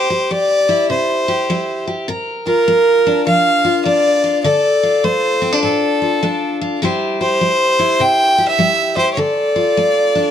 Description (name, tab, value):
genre	country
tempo	102 BPM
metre	4/4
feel	swing 64% on 8ths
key	unclear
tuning	A4 = 436 Hz
part	clear fiddle	melody	0.0-10.3 s	A4 to G5	-14 LUFS	equal	none
part	picked steel-string acoustic guitar	accompaniment	0.0-10.3 s	A2 to C5	-18 LUFS	left 2 dB	none
room	light reverb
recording	dark, warm production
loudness	-13 LUFS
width	side -9 dB against mid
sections	0.0-10.3 A section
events	none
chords	0.0 C; 2.1 Bb; 4.4 Dm; 6.8 C; 9.2 Dm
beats	0.31 0.90 1.49 | 2.08 2.67 3.27 3.86 | 4.45 5.04 5.63 6.22 | 6.81 7.40 8.00 8.59 | 9.18 9.77